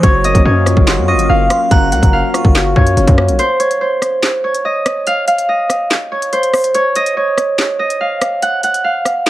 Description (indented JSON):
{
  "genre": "hip hop, drill",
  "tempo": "143 BPM",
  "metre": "4/4",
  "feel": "half-time",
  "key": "unclear",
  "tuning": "A4 = 440 Hz",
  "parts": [
    { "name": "Celtic harp", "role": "melody", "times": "0.0-9.3 s", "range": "C5 to Gb5", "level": "-14 LUFS", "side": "right 1 dB", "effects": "low-pass filter" },
    { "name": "glassy synth bell", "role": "second line", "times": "0.0-2.5 s", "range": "Bb5 to Db6", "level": "-25 LUFS", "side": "right 3 dB", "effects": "chorus, tremolo, digital delay" },
    { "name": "warm grand piano", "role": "accompaniment", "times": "0.0-3.4 s", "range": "Gb3 to Gb4", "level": "-19 LUFS", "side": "left 4 dB", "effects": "low-pass filter" },
    { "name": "hollow soft pad", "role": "sustained chords", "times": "0.0-3.4 s", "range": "Gb3 to F5", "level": "-24 LUFS", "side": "equal", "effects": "ensemble chorus" },
    { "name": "distorted 808-style bass", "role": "bass", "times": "0.0-3.4 s", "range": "Gb1 to Gb2", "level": "-15 LUFS", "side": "equal", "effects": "distortion" },
    { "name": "drill drum kit", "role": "drums", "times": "0.0-9.3 s", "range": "handclaps, hi-hat, kick drum, rim click, snare drum", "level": "-14 LUFS", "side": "equal", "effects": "none" }
  ],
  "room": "little or no reverb",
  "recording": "none",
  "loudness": "-11 LUFS",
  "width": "side -15 dB against mid",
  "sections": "0.0-3.4 A section; 3.4-9.3 B section",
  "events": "break 3.4-9.3",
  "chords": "0.0 Gbmaj7; 3.4 N.C."
}